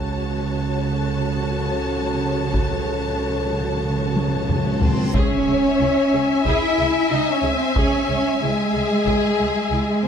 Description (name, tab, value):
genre	cinematic, epic orchestral film score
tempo	92 BPM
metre	4/4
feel	straight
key	C# harmonic minor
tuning	A4 = 440 Hz
part	rich studio violin section	melody	0.0-10.1 s	G#5 to A5	-30 LUFS	left 3 dB	none
part	warm symphonic violin section	second line	0.0-10.1 s	G#4 to E5	-28 LUFS	left 4 dB	none
part	warm symphonic viola section	accompaniment	0.0-10.1 s	E4 to E5	-27 LUFS	right 1 dB	none
part	dark French horn section	sustained chords	0.0-10.1 s	F#3 to A4	-24 LUFS	left 2 dB	none
part	clear symphonic double bass section	bass	0.0-10.1 s	C#2	-26 LUFS	right 4 dB	none
part	dark symphonic cello section	bass	0.0-10.1 s	C#3 to E4	-26 LUFS	right 3 dB	none
part	timpani	percussion	0.0-5.1 s	C#3	-28 LUFS	left 1 dB	none
part	taiko ensemble	drums	2.5-9.7 s	none	-24 LUFS	equal	none
part	reverse cymbal and impact	sound effects	4.8-7.8 s	none	-32 LUFS	equal	none
room	moderate scoring stage reverb, RT60 1.7 s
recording	none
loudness	-18 LUFS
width	side -7 dB against mid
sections	0.0-5.2 A section; 5.2-10.1 B section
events	timpani fill 0.0-5.2; drum fill 4.2-5.2; reverse cymbal 4.8-5.2; impact 5.2-7.8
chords	0.0 F#m/C#; 5.2 C#m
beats	0.58 1.24 1.89 | 2.54 3.19 3.85 4.50 | 5.15 5.80 6.45 7.11 | 7.76 8.41 9.06 9.71